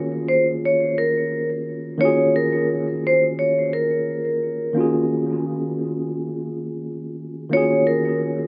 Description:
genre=hip hop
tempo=87 BPM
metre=4/4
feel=swing 56% on 16ths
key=Eb minor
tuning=A4 = 440 Hz
part: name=tine electric piano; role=accompaniment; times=0.0-8.5 s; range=Eb3 to Ab4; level=-25 LUFS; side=equal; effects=overdrive, cassette tape, high-pass filter, low-pass filter, analog delay
part: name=vibraphone with hard mallets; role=melody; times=0.3-8.2 s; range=Bb4 to Db5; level=-22 LUFS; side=equal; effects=high-pass filter, low-pass filter, analog delay
room=light reverb, small room ambience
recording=echo-heavy mix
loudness=-21 LUFS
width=mono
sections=0.0-8.5 A section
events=break 4.8-7.5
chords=0.0 Ebm11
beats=0.63 1.32 | 2.01 2.70 3.39 4.08 | 4.77 5.46 6.15 6.84 | 7.53 8.22

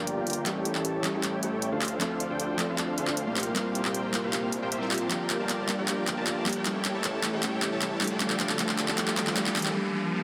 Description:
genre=future bass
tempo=155 BPM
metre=4/4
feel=half-time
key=unclear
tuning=A4 = 439 Hz
part: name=glassy digital keys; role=accompaniment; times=0.0-10.2 s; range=E3 to Bb4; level=-35 LUFS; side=equal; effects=chorus, delay
part: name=ethereal airy pad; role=sustained chords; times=0.2-9.8 s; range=G4 to D6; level=-46 LUFS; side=equal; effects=none
part: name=Celtic harp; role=arpeggios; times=0.0-10.2 s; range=E4 to Bb5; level=-41 LUFS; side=equal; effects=none
part: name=dense compressed supersaw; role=riff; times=0.0-9.7 s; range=Bb3 to A5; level=-35 LUFS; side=equal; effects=low-pass filter, delay
part: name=detuned saw bass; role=bass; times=0.0-9.7 s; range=G1 to D2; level=-39 LUFS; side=equal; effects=chorus, tube saturation, high-pass filter
part: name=trap drum kit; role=drums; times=0.1-9.7 s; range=handclaps, hi-hat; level=-33 LUFS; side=equal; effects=overdrive
part: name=riser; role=sound effects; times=7.4-10.2 s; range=none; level=-41 LUFS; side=equal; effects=none
room=moderate huge ambient reverb, RT60 6.8 s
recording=dense, heavily limited modern master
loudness=-29 LUFS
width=mono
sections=0.0-10.2 A section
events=build-up 0.0-10.2; drum fill 0.0-9.8; filter sweep on supersaw synth 0.0-10.2; riser 7.4-10.2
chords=0.5 A7; 1.8 Dm7; 3.4 C7sus4; 5.1 Gm7; 6.7 A7; 8.0 Dm7; 9.6 C7sus4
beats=0.07 | 0.46 0.85 1.24 1.62 | 2.01 2.40 2.78 3.17 | 3.56 3.94 4.33 4.72 | 5.11 5.49 5.88 6.27 | 6.66 7.04 7.43 7.82 | 8.20 8.59 8.98 9.37 | 9.75 10.14

